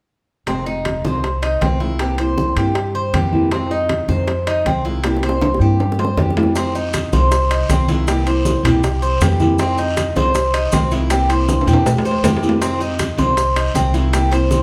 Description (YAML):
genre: latin, Cuban son and guajira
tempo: 158 BPM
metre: 4/4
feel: straight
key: F minor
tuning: A4 = 440 Hz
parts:
  - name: nylon-string guitar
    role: accompaniment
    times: 0.5-14.6 s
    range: C3 to F4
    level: -24 LUFS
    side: equal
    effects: none
  - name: Cuban tres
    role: arpeggios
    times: 0.5-14.6 s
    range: C4 to C5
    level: -23 LUFS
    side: equal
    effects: none
  - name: upright bass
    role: bass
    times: 0.5-14.6 s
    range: F1 to G2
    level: -22 LUFS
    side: equal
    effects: none
  - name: bongos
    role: percussion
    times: 0.5-14.6 s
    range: none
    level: -30 LUFS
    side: equal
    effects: none
  - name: congas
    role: percussion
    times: 0.5-14.6 s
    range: none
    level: -26 LUFS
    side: equal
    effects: none
  - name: timbales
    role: percussion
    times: 0.5-14.5 s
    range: none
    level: -26 LUFS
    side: equal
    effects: none
  - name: guiro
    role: percussion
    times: 6.6-14.6 s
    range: none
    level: -36 LUFS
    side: equal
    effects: none
  - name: maracas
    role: percussion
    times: 6.6-14.6 s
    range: none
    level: -36 LUFS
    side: equal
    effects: none
room: moderate large studio reverb, RT60 1.2 s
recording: band playing live in one room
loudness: -17 LUFS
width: mono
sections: 0.5-6.6 A section; 6.6-14.6 B section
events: drum fill 5.0-6.6, 11.5-12.6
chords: 0.5 Fm7; 2.0 C7; 3.5 Fm7; 5.0 C7; 6.6 Fm7; 8.1 C7; 9.6 Fm7; 11.1 C7; 12.6 Fm7